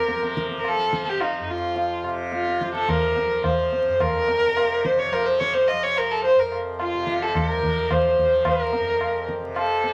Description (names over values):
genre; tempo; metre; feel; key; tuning
indian classical, Hindustani; 108 BPM; 4/4; straight; F major; A4 = 440 Hz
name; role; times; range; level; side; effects
warm violin; melody; 0.0-9.9 s; Eb4 to Eb5; -24 LUFS; equal; none
tanpura; drone; 0.0-9.9 s; F2 to F3; -34 LUFS; equal; none
tabla; percussion; 0.1-9.9 s; none; -31 LUFS; equal; none
room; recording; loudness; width
wet club reverb, RT60 0.8 s; vinyl crackle; -23 LUFS; mono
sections
0.0-9.9 A section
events
none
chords
none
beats
0.09 0.65 1.21 | 1.77 2.33 2.89 3.45 | 4.01 4.57 5.13 5.68 | 6.24 6.80 7.35 7.91 | 8.46 9.02 9.57